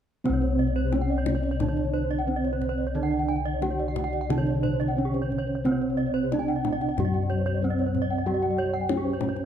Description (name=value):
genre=Balinese gamelan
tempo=90 BPM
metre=4/4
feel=uneven beats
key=C pelog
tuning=A4 = 436 Hz
part: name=gamelan-type bronze metallophone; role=accompaniment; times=0.2-9.5 s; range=C3 to G3-45c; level=-34 LUFS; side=left 2 dB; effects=none
part: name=gamelan-type bossed gongs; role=bass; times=0.2-9.5 s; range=C2 to G4-45c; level=-28 LUFS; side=left 1 dB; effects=none
part: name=gamelan-type bronze metallophone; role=melody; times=0.3-9.5 s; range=C4 to G4-45c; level=-29 LUFS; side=right 5 dB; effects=none
part: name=gamelan-type bronze metallophone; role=arpeggios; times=0.3-9.4 s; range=Ab4-40c to Ab5-40c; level=-33 LUFS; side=left 5 dB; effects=none
part: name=gamelan-type bronze metallophone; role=arpeggios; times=0.3-9.4 s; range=Ab4-40c to Ab5-40c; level=-33 LUFS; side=right 6 dB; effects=none
part: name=kendang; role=percussion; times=0.3-9.4 s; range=none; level=-35 LUFS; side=left 8 dB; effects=none
room=light reverb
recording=close, detailed microphones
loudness=-24 LUFS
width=side -9 dB against mid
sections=0.2-9.5 A section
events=none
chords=none